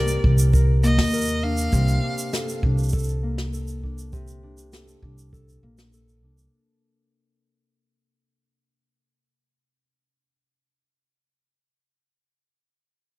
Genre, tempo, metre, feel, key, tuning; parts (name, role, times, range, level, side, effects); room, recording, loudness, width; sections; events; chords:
folktronica; 100 BPM; 4/4; straight; A4 = 439 Hz
rich violin; melody; 0.0-2.6 s; D5 to F5; -30 LUFS; right 1 dB; tape echo
Celtic harp; arpeggios; 0.0-11.1 s; C3 to Bb4; -28 LUFS; left 2 dB; tape echo
upright bass; bass; 0.0-6.5 s; Bb1 to Eb2; -22 LUFS; equal
shaker and snare drum; drums; 0.1-6.5 s; -31 LUFS; right 1 dB
kick drum; drums; 0.2-5.4 s; -23 LUFS; equal
small room ambience; -19 LUFS; side -20 dB against mid
0.0-6.5 A section
fade-out 0.0-6.5
0.0 Cm9; 1.7 Bbmaj9